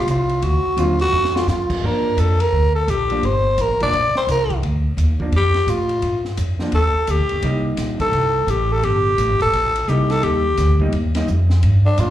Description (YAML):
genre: jazz, small-group swing and bop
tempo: 172 BPM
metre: 4/4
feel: swing 63% on 8ths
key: G minor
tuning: A4 = 444 Hz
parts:
  - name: growling tenor saxophone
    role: melody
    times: 0.0-12.1 s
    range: D4 to D5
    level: -19 LUFS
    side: left 1 dB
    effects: slapback echo
  - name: upright bass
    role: bass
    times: 0.0-12.1 s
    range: Eb1 to A2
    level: -19 LUFS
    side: equal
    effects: none
  - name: open jazz drum kit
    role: drums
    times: 0.1-12.1 s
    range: crash cymbal, hi-hat, kick drum, ride cymbal, snare drum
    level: -30 LUFS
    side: equal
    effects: none
  - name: vintage hollow-body jazz guitar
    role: accompaniment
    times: 0.8-12.1 s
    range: D3 to E#4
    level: -24 LUFS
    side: right 1 dB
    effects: slapback echo
room: light reverb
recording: live gig heard through the venue's PA, club reverb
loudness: -16 LUFS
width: side -12 dB against mid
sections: 0.0-1.8 A section; 1.8-12.1 A section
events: tenor saxophone solo 0.0-12.1; drum fill 1.1-1.5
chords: 0.4 D7#9; 1.8 Gm7; 7.4 Cm7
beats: 0.09 | 0.44 0.79 1.14 1.49 | 1.83 2.18 2.53 2.88 | 3.23 3.58 3.93 4.28 | 4.63 4.98 5.33 5.68 | 6.03 6.38 6.73 7.08 | 7.43 7.78 8.13 8.48 | 8.83 9.18 9.53 9.88 | 10.23 10.58 10.93 11.28 | 11.63 11.98